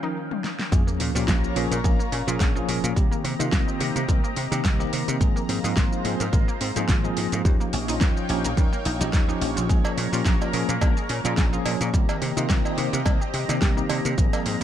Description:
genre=nu-disco, nu disco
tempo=107 BPM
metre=4/4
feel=swing 55% on 16ths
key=Bb dorian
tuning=A4 = 443 Hz
part: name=bell-like tine electric piano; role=accompaniment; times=0.0-14.6 s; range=Eb3 to Bb4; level=-28 LUFS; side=equal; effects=medium stereo tremolo, sidechain pumping, ping-pong delay
part: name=lush unison pad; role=sustained chords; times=0.0-14.6 s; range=Eb3 to Bb5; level=-32 LUFS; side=left 1 dB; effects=chorus, phaser, sidechain pumping
part: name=analog pluck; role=arpeggios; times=0.0-14.6 s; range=G3 to Ab4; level=-34 LUFS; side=right 1 dB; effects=chorus, sidechain pumping, dub echo
part: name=pop drum kit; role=drums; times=0.3-14.6 s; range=hi-hat, shaker, snare drum, toms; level=-30 LUFS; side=equal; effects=none
part: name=dry thumbed slap bass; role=bass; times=0.7-14.6 s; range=Ab1 to C3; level=-28 LUFS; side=equal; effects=tube saturation
part: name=electronic kick drum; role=drums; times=0.7-14.3 s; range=none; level=-22 LUFS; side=equal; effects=none
part: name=sub drop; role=sound effects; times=0.8-3.0 s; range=none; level=-32 LUFS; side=equal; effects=none
part: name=cowbell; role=percussion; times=9.8-14.4 s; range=none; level=-33 LUFS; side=right 4 dB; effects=none
room=light reverb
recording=dark, warm production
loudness=-21 LUFS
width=side -10 dB against mid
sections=0.7-14.6 A section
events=drum fill 0.3-0.7; drop 0.7-14.6; impact 0.7-3.0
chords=0.0 Eb9; 0.7 Bbm7; 3.0 Cm7; 5.2 Ab69; 7.5 Eb9; 9.7 Bbm7; 11.9 Cm7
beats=0.16 | 0.72 1.28 1.84 2.40 | 2.96 3.53 4.09 4.65 | 5.21 5.77 6.33 6.89 | 7.45 8.01 8.57 9.13 | 9.69 10.26 10.81 11.38 | 11.94 12.50 13.06 13.62 | 14.18

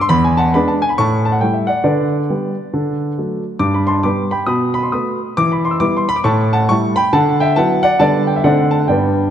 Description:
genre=jazz, stride piano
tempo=137 BPM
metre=4/4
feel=swing 63% on 8ths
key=G major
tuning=A4 = 440 Hz
part: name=warm grand piano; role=solo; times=0.0-9.3 s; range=E2 to E6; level=-13 LUFS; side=equal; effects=none
room=wet concert hall reverb, RT60 2.0 s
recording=dark, warm production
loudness=-13 LUFS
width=side -9 dB against mid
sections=0.0-9.3 A section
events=none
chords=0.1 E7; 1.0 A5; 1.9 G/D; 2.7 D; 3.6 G; 4.5 B7; 5.4 Em; 6.2 A5; 7.1 D69; 8.0 G/D; 8.4 D7b9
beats=| 0.10 0.54 0.98 1.42 | 1.86 2.30 2.74 3.18 | 3.62 4.05 4.49 4.93 | 5.37 5.81 6.25 6.69 | 7.12 7.56 8.00 8.44 | 8.88

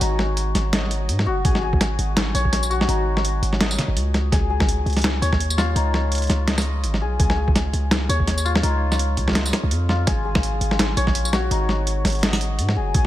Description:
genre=half-time drum and bass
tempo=167 BPM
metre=4/4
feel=swing 56% on 16ths, half-time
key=unclear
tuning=A4 = 441 Hz
part: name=santur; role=arpeggios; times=0.0-13.1 s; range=D#4 to D#5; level=-26 LUFS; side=left 4 dB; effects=vintage 12-bit sampler grit, dub echo
part: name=long sustained 808-style bass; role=bass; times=0.0-13.1 s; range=F#1 to G#2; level=-22 LUFS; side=equal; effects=none
part: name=boom bap sampler-style drum kit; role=drums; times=0.0-13.1 s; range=hi-hat, snare drum, tambourine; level=-23 LUFS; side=equal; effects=small room reverb
part: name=electronic kick drum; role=drums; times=1.4-13.0 s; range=none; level=-22 LUFS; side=equal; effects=small room reverb
room=light reverb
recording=none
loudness=-18 LUFS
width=side -14 dB against mid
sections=0.0-13.1 A section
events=kick drops out 9.4-10.1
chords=0.0 G#5; 4.3 C#; 10.1 G#5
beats=| 0.01 0.37 0.73 1.09 | 1.45 1.81 2.17 2.52 | 2.88 3.24 3.60 3.96 | 4.32 4.68 5.04 5.40 | 5.76 6.12 6.48 6.84 | 7.20 7.55 7.92 8.27 | 8.63 8.99 9.35 9.71 | 10.07 10.43 10.79 11.15 | 11.51 11.87 12.23 12.59 | 12.95

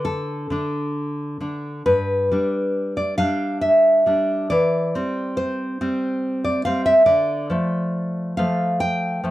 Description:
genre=romantic piece for solo classical guitar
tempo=69 BPM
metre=3/4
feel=rubato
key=C major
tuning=A4 = 439 Hz
part: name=nylon-string guitar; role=solo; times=0.0-9.3 s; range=G2 to G5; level=-19 LUFS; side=equal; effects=none
room=light reverb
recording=none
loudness=-18 LUFS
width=side -15 dB against mid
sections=0.0-9.3 A section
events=none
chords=0.0 D5; 1.9 G; 4.5 C/E; 7.1 Dm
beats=0.05 0.96 | 1.86 2.74 3.62 | 4.50 5.37 6.22 | 7.08 7.93 8.79

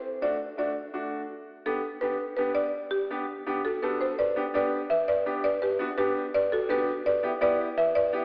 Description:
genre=latin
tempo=167 BPM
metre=4/4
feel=straight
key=G major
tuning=A4 = 440 Hz
part: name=buzzing marimba with medium hard mallets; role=melody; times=0.0-8.2 s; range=F#4 to E5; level=-26 LUFS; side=equal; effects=none
part: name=bright upright piano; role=accompaniment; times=0.2-8.2 s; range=A3 to A4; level=-31 LUFS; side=equal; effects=none
room=wet concert hall reverb, RT60 2.1 s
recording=recorded in a church or concert hall, AM radio sound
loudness=-25 LUFS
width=side -35 dB against mid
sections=0.0-4.2 A section; 4.2-8.2 B section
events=none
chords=0.0 D; 1.3 G; 7.1 Em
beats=0.22 0.58 0.94 | 1.30 1.66 2.02 2.38 | 2.74 3.10 3.46 3.82 | 4.18 4.54 4.90 5.26 | 5.62 5.98 6.34 6.70 | 7.05 7.41 7.77 8.13

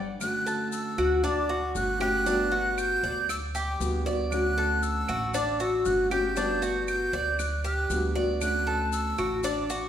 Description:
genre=latin, Cuban son and guajira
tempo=117 BPM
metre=4/4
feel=straight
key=D major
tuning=A4 = 438 Hz
part: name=breathy jazz flute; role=melody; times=0.2-9.9 s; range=D6 to G6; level=-30 LUFS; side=right 1 dB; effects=none
part: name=nylon-string guitar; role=accompaniment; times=0.2-9.5 s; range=D3 to F#4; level=-31 LUFS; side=equal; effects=none
part: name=claves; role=percussion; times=0.2-9.4 s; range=none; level=-42 LUFS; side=right 6 dB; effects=none
part: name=maracas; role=percussion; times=0.2-9.9 s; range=none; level=-42 LUFS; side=left 6 dB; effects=none
part: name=Cuban tres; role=arpeggios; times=0.5-9.9 s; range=D4 to D5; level=-29 LUFS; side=left 1 dB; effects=none
part: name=upright bass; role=bass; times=1.0-9.9 s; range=G1 to D2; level=-33 LUFS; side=equal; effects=none
room=wet recital hall reverb, RT60 1.5 s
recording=recorded in a church or concert hall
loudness=-24 LUFS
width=side -10 dB against mid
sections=0.2-9.9 A section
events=band accent 0.0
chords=0.2 Dmaj7; 2.3 Gmaj7; 4.3 Dmaj7; 6.4 Gmaj7; 8.4 Dmaj7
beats=| 0.21 0.72 1.24 1.75 | 2.26 2.77 3.29 3.80 | 4.31 4.83 5.34 5.85 | 6.36 6.88 7.39 7.90 | 8.41 8.93 9.44

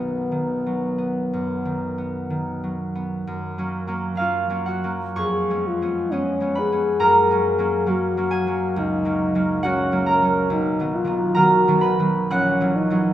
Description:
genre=classical, romantic duo for French horn and harp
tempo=57-72 BPM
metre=4/4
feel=rubato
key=B major, F# major from 3.3 s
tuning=A4 = 440 Hz
part: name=mellow French horn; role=melody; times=0.0-13.1 s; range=B3 to G#4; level=-23 LUFS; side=left 3 dB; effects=none
part: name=concert harp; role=accompaniment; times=0.0-13.1 s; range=A#1 to F#6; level=-21 LUFS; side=right 2 dB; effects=none
room=moderate recital hall reverb, RT60 1.6 s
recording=none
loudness=-19 LUFS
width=side -12 dB against mid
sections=0.0-3.3 A section; 3.3-13.1 B section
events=none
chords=0.0 B; 3.3 F#; 5.2 C#7/E#; 7.0 F#; 10.5 B; 12.3 F#7/A#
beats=0.30 1.32 2.30 | 3.28 4.19 5.20 6.13 | 7.01 7.89 8.78 9.67 | 10.52 11.37 12.32

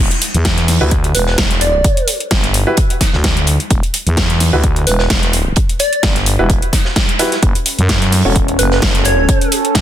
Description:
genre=bass house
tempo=129 BPM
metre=4/4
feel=swing 55% on 16ths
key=E dorian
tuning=A4 = 440 Hz
part: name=growling FM bass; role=bass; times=0.0-9.8 s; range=E1 to F#2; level=-15 LUFS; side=equal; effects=tube saturation, sidechain pumping
part: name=big-room dance drum kit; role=drums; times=0.1-9.8 s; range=hi-hat, snare drum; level=-17 LUFS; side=equal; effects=none
part: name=tight metal drum kit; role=drums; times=0.1-9.8 s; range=hi-hat, snare drum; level=-25 LUFS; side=right 3 dB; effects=none
part: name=electronic kick drum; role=drums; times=0.4-9.8 s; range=none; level=-15 LUFS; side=equal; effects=none
part: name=dark baby grand piano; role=stabs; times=0.8-8.3 s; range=C#4 to C#5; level=-19 LUFS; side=right 1 dB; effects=sidechain pumping, tape echo
part: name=plucky unison lead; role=melody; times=1.1-2.1, 4.9-9.5 s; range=B4 to D5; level=-18 LUFS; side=right 2 dB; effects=tape echo
part: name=warbly tape-like pad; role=texture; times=7.7-9.8 s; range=C#4 to A4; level=-20 LUFS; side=equal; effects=chorus, built-in reverb, sidechain pumping
room=light reverb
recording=dense, heavily limited modern master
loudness=-11 LUFS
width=side -11 dB against mid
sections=0.0-9.8 A section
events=none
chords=0.0 Em; 7.4 F#m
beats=0.45 0.92 1.38 | 1.84 2.31 2.77 3.24 | 3.71 4.17 4.63 5.10 | 5.57 6.03 6.50 6.96 | 7.43 7.89 8.36 8.82 | 9.29 9.75

